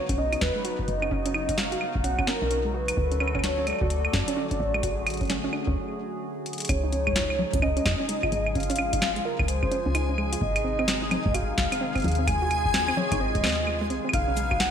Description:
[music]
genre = IDM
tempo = 129 BPM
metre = 4/4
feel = swing 62% on 16ths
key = Db major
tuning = A4 = 438 Hz
[part]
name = warm velvety synth lead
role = melody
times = 0.0-14.7 s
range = Bb4 to Ab5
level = -29 LUFS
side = equal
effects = chorus, digital delay
[part]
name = hollow soft pad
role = sustained chords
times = 0.0-14.7 s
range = C3 to Cb5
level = -34 LUFS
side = equal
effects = chorus
[part]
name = soft round pluck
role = arpeggios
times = 0.0-14.6 s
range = Ab3 to Gb4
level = -32 LUFS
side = right 3 dB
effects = chorus, cassette tape, ping-pong delay
[part]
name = woody FM bass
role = bass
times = 0.1-14.7 s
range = Gb1 to F#2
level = -29 LUFS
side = equal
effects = none
[part]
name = booming analog drum machine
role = drums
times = 0.1-14.7 s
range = claves, congas, hi-hat, shaker, snare drum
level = -29 LUFS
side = equal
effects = studio reverb, gated reverb
[part]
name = electronic kick drum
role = drums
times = 0.1-14.6 s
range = none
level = -31 LUFS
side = equal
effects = studio reverb
[part]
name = backwards swelling texture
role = texture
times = 6.7-14.7 s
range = Ab4 to Ab5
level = -36 LUFS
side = equal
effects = built-in reverb
[sound]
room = moderate lush hall reverb, RT60 2.4 s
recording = bright 1980s-style digital production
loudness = -23 LUFS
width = side -8 dB against mid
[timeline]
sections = 0.0-6.7 A section; 6.7-14.7 B section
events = break 5.8-6.7; drum fill 6.5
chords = 0.0 Cbadd9; 3.0 D; 6.7 Dbadd9; 10.4 Ab; 14.1 Cbadd9

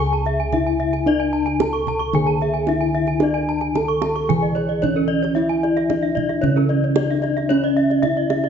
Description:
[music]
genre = Balinese gamelan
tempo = 112 BPM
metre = 4/4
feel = straight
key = C# pelog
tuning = A4 = 443 Hz
[part]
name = gamelan-type bronze metallophone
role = melody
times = 0.0-8.5 s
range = C#4 to A4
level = -22 LUFS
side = equal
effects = none
[part]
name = gamelan-type bronze metallophone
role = arpeggios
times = 0.0-8.4 s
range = C#5 to A5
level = -25 LUFS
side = left 3 dB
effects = none
[part]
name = gamelan-type bossed gongs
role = bass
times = 0.0-8.5 s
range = C#2 to G#4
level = -21 LUFS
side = left 1 dB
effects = none
[part]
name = gamelan-type bronze metallophone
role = arpeggios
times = 0.1-8.5 s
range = A4 to C#6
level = -28 LUFS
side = right 7 dB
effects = none
[part]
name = kendang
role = percussion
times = 0.3-8.5 s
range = none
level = -26 LUFS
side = right 8 dB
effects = none
[sound]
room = moderate recital hall reverb, RT60 1.6 s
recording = nothing above 7.8 kHz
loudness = -17 LUFS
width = side -7 dB against mid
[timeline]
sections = 0.0-8.5 A section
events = none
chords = none

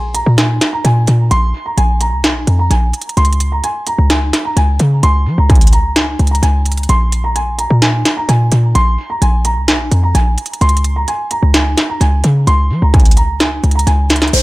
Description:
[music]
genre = hip hop, trap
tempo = 129 BPM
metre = 4/4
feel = half-time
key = unclear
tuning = A4 = 440 Hz
[part]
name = dark concert grand piano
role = melody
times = 0.0-14.4 s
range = C5 to C6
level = -19 LUFS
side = right 1 dB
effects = low-pass filter, tape echo
[part]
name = short 808-style bass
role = bass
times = 0.0-14.4 s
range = Bb1 to F3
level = -12 LUFS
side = equal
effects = none
[part]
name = industrial drum kit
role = drums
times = 0.1-14.4 s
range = hi-hat, kick drum, snare drum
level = -14 LUFS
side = equal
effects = distortion, tape echo
[part]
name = downlifter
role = sound effects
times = 14.3-14.4 s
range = none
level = -10 LUFS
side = equal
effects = none
[sound]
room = digital ambience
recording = echo-heavy mix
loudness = -11 LUFS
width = side -19 dB against mid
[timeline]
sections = 0.0-14.3 A section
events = drum fill 13.9-14.3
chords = 0.0 Bb5; 3.2 Db5; 6.9 Bb5; 10.6 Db5

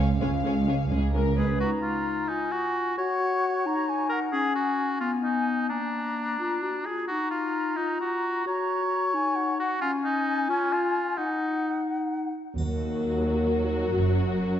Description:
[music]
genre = cinematic, heroic adventure film score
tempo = 88 BPM (dotted quarters)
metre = 6/8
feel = straight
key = Eb minor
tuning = A4 = 440 Hz
[part]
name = dark symphonic violin section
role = melody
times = 0.0-0.9, 12.6-14.6 s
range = Bb4 to E#5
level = -37 LUFS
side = left 7 dB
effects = none
[part]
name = rich symphonic violin section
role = second line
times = 0.0-1.6, 12.6-14.6 s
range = Gb4 to C#5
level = -34 LUFS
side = left 4 dB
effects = none
[part]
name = warm symphonic viola section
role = accompaniment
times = 0.0-1.4, 12.6-14.6 s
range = Gb3 to C#4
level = -33 LUFS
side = equal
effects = none
[part]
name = warm symphonic cello section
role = bass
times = 0.0-1.5, 12.6-14.6 s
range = C#2 to Gb2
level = -28 LUFS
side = right 1 dB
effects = none
[part]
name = warm symphonic double bass section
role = bass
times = 0.0-1.5, 12.6-14.4 s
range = Gb1 to Eb2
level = -28 LUFS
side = right 3 dB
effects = none
[part]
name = clear oboe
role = second line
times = 1.4-11.9 s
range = Db4 to Db5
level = -29 LUFS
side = right 1 dB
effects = none
[part]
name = concert flute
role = second line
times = 1.6-12.3 s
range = Gb5 to Bb5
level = -31 LUFS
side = left 3 dB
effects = none
[part]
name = mellow clarinet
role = second line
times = 1.6-12.3 s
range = Bb3 to Gb4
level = -29 LUFS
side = left 3 dB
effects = none
[part]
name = warm French horn section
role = sustained chords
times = 12.6-14.6 s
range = Gb3 to Bb4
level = -30 LUFS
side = left 2 dB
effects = none
[part]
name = triangle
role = percussion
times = 12.6-13.4 s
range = none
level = -53 LUFS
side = left 2 dB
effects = none
[sound]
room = moderate concert hall reverb, RT60 1.9 s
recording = dark, warm production, nothing above 8.0 kHz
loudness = -24 LUFS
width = side -10 dB against mid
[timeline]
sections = 0.0-1.6 A section; 1.6-12.6 B section; 12.6-14.6 C section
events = none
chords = 0.0 C#; 1.6 Ebm; 3.0 Gb; 4.3 Db5; 5.7 Bb; 7.1 Ebm; 8.5 Gb; 9.8 Db; 11.2 Ebm; 13.9 Gb

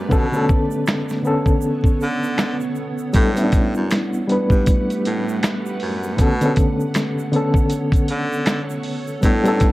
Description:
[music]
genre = lo-fi hip hop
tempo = 79 BPM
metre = 4/4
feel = swing 60% on 16ths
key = B minor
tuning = A4 = 440 Hz
[part]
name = overdriven reed electric piano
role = accompaniment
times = 0.0-9.7 s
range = D3 to B4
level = -20 LUFS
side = left 1 dB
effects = fast tremolo, low-pass filter
[part]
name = granular cloud pad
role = sustained chords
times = 0.0-9.7 s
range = A3 to F#5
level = -29 LUFS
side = right 4 dB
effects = built-in reverb, low-pass filter
[part]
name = clear baritone saxophone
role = bass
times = 0.0-9.7 s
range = F#2 to D3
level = -24 LUFS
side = equal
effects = none
[part]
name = dusty soul sampler-style drum kit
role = drums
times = 0.1-9.7 s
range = finger snaps, hi-hat, kick drum, snare drum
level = -18 LUFS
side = equal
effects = none
[part]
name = egg shaker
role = percussion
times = 0.1-9.7 s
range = none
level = -44 LUFS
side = right 12 dB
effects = none
[sound]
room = light reverb, digital ambience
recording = vinyl crackle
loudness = -17 LUFS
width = side -18 dB against mid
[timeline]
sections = 0.0-9.7 A section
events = break 0.0-3.2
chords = 0.1 Bm9; 3.2 A9sus4; 6.2 Bm9

